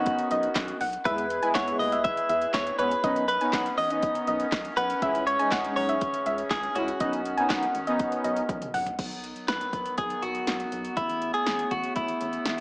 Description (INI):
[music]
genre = synth-pop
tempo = 121 BPM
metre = 4/4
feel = straight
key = unclear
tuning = A4 = 440 Hz
[part]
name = direct-recorded clean electric guitar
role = melody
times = 0.0-12.6 s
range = E4 to E5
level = -28 LUFS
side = equal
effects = wide subtle chorus
[part]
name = soft round pluck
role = second line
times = 0.0-8.8 s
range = C#5 to G#5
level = -30 LUFS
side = equal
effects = chorus, tape echo
[part]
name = analog synth brass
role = accompaniment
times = 0.0-8.4 s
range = G#3 to E4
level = -31 LUFS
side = equal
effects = chorus
[part]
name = mellow woodwind section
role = sustained chords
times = 0.0-12.6 s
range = C#3 to B4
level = -34 LUFS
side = equal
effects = none
[part]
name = rubbery square bass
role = bass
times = 0.0-12.6 s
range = A1 to E2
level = -40 LUFS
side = equal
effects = none
[part]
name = deep house drum kit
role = drums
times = 0.1-12.6 s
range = crash cymbal, handclaps, hi-hat, kick drum, snare drum, toms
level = -32 LUFS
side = equal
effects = overdrive
[sound]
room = moderate plate reverb, RT60 2.2 s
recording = small speaker sound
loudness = -24 LUFS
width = side -27 dB against mid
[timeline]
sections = 0.0-9.0 A section; 9.0-12.6 B section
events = drum fill 8.5-9.0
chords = 0.0 Badd9; 1.1 E; 3.0 Badd9; 5.0 C#m; 7.0 Badd9; 9.0 B; 11.0 Aadd9